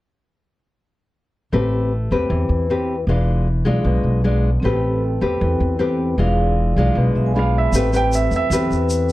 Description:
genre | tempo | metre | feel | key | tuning
bossa nova | 155 BPM | 4/4 | straight | A minor | A4 = 441 Hz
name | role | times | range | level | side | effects
nylon-string guitar | accompaniment | 1.5-9.1 s | B2 to B4 | -20 LUFS | left 2 dB | none
upright bass | bass | 1.5-9.1 s | E1 to E2 | -19 LUFS | equal | none
vibraphone with medium mallets | accompaniment | 4.6-9.1 s | C4 to B5 | -26 LUFS | right 3 dB | none
warm baby grand piano | melody | 7.4-9.1 s | E5 to G5 | -22 LUFS | right 6 dB | analog delay
tube shaker | percussion | 7.7-9.1 s | none | -31 LUFS | left 2 dB | none
room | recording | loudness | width
moderate studio reverb, RT60 0.5 s | dark, warm production | -16 LUFS | side -16 dB against mid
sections
1.5-7.7 A section; 7.7-9.1 B section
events
vibraphone fill 7.0-7.7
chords
1.5 Am9; 3.1 E7b9; 4.6 Am9; 6.2 E7b9; 7.7 Am9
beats
| 1.52 1.91 2.30 2.69 | 3.08 3.46 3.85 4.24 | 4.63 5.02 5.40 5.79 | 6.18 6.57 6.96 7.34 | 7.73 8.12 8.51 8.90

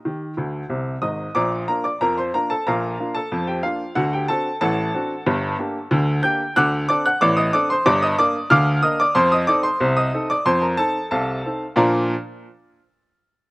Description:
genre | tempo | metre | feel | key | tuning
ragtime piano | 92 BPM | 2/4 | straight | Bb major | A4 = 440 Hz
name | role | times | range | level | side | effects
clear upright piano | solo | 0.0-12.1 s | G1 to G6 | -18 LUFS | equal | slapback echo
room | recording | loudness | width
little or no reverb | recorded outdoors, with no room sound | -18 LUFS | side -26 dB against mid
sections
0.0-1.4 A section; 1.4-11.8 B section; 11.8-13.1 C section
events
upright piano fill 0.4-1.4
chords
0.0 Eb; 1.4 Bb; 4.0 D7; 5.3 Gm; 6.6 D7; 7.9 Gm; 9.2 F7; 11.8 Bb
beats
| 0.04 0.70 | 1.36 2.02 | 2.67 3.32 | 3.97 4.62 | 5.27 5.92 | 6.57 7.21 | 7.86 8.51 | 9.16 9.81 | 10.46 11.12 | 11.77

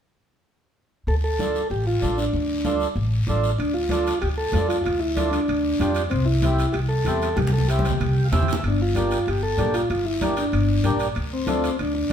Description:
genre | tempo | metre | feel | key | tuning
latin, cumbia | 190 BPM | 4/4 | straight | D minor | A4 = 440 Hz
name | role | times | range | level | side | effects
combo organ | melody | 1.1-12.1 s | C4 to A4 | -24 LUFS | equal | none
upright bass | bass | 1.1-12.1 s | G1 to F2 | -24 LUFS | equal | none
congas | percussion | 1.1-12.1 s | none | -30 LUFS | left 1 dB | none
guiro | percussion | 1.1-12.1 s | none | -37 LUFS | left 4 dB | none
mellow accordion | accompaniment | 1.4-12.1 s | A3 to G5 | -28 LUFS | right 2 dB | none
timbales | percussion | 3.6-12.0 s | none | -36 LUFS | right 4 dB | none
room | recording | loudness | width
wet studio reverb, RT60 0.9 s | heard from further back in the room | -20 LUFS | side -8 dB against mid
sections
1.1-3.6 A section; 3.6-12.1 B section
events
drum fill 7.4-8.6; accordion fill 8.0-8.6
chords
1.1 Dm; 6.1 C; 8.6 Gm; 11.2 Dm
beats
| 1.08 1.39 1.71 2.02 | 2.34 2.65 2.97 3.28 | 3.60 3.91 4.23 4.54 | 4.86 5.17 5.49 5.80 | 6.12 6.43 6.75 7.06 | 7.38 7.69 8.01 8.32 | 8.64 8.96 9.27 9.59 | 9.90 10.22 10.53 10.85 | 11.16 11.48 11.79 12.11

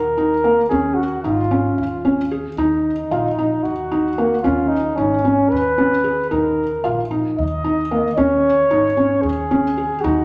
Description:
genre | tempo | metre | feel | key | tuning
contemporary instrumental, chamber music in an uneven meter | 225 BPM (eighths) | 7/8 | straight | unclear | A4 = 441 Hz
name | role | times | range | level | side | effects
breathy flugelhorn | melody | 0.0-10.2 s | Db4 to Eb5 | -22 LUFS | equal | none
upright bass | bass | 0.0-10.2 s | Ab1 to Eb2 | -30 LUFS | equal | none
felt-muted upright piano | arpeggios | 0.2-10.2 s | Bb3 to Ab4 | -21 LUFS | equal | none
room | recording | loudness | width
wet recital hall reverb, RT60 1.4 s | none | -18 LUFS | mono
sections
0.0-10.2 A section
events
none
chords
0.0 Eb5; 0.7 Db; 2.6 Ebm; 4.4 Db5; 6.3 Eb5; 8.2 Db5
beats
0.18 0.44 | 0.71 0.98 1.24 1.51 1.78 2.04 2.31 | 2.58 2.85 3.11 3.38 3.65 3.91 4.18 | 4.45 4.71 4.98 5.25 5.51 5.78 6.05 | 6.31 6.58 6.85 7.11 7.38 7.64 7.91 | 8.18 8.44 8.71 8.97 9.24 9.51 9.77 | 10.04

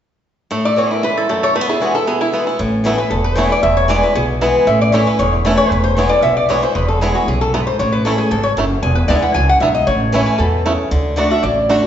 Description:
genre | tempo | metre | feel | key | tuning
bluegrass | 231 BPM | 4/4 | straight | A major | A4 = 440 Hz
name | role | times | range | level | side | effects
bluegrass banjo | melody | 0.5-11.8 s | E3 to A4 | -22 LUFS | right 2 dB | none
picked swing-style acoustic guitar | accompaniment | 0.5-11.9 s | E2 to F#4 | -18 LUFS | left 1 dB | none
lap resonator guitar | melody | 0.7-11.8 s | E4 to G#5 | -17 LUFS | left 1 dB | none
upright bass | bass | 2.6-11.8 s | E1 to E2 | -19 LUFS | equal | none
room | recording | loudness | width
wet recital hall reverb, RT60 1.5 s | recorded in a church or concert hall, nothing above 7.8 kHz | -13 LUFS | side -9 dB against mid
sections
0.5-2.6 A section; 2.6-10.9 B section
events
none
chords
0.5 Asus2; 1.6 E; 2.6 Asus2; 3.6 E; 4.7 A; 5.7 E; 7.8 A; 8.8 E7; 9.9 A; 10.9 D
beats
| 0.51 0.77 1.03 1.29 | 1.55 1.81 2.07 2.33 | 2.59 2.85 3.11 3.37 | 3.63 3.89 4.15 4.41 | 4.67 4.93 5.19 5.45 | 5.71 5.97 6.23 6.49 | 6.75 7.01 7.27 7.53 | 7.79 8.05 8.31 8.57 | 8.83 9.09 9.35 9.61 | 9.87 10.13 10.39 10.65 | 10.91 11.17 11.43 11.69

